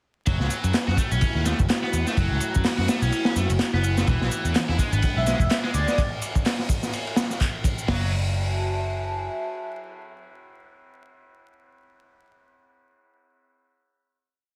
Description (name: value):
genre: breakbeat, breaks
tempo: 126 BPM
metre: 4/4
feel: swing 57% on 16ths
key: F# minor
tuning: A4 = 441 Hz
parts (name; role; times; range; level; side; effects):
- dark analog pad; sustained chords; 1.1-11.1 s; G#3 to A5; -35 LUFS; equal; chorus, phaser, vintage 12-bit sampler grit, sidechain pumping
- scooped high-gain guitar; riff; 0.3-8.1 s; E3 to F#4; -33 LUFS; equal; distortion, digital delay
- picked electric bass; bass; 0.3-9.3 s; E1 to F#2; -27 LUFS; equal; tube saturation
- crunchy breakbeat drum kit; drums; 0.3-8.0 s; hi-hat, kick drum, ride cymbal, snare drum; -27 LUFS; equal; none
- electronic shaker and handclaps; drums; 0.3-7.9 s; none; -36 LUFS; equal; none
- airy dreamy lead; melody; 5.2-6.0 s; D5 to E5; -31 LUFS; equal; chorus, AM radio sound, digital delay
room: light reverb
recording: vinyl crackle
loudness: -24 LUFS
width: mono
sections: 0.3-7.9 drop; 7.9-11.7 final chord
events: drop 0.3-7.9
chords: 0.3 F#m7; 4.1 E7; 6.0 N.C.; 7.9 F#m9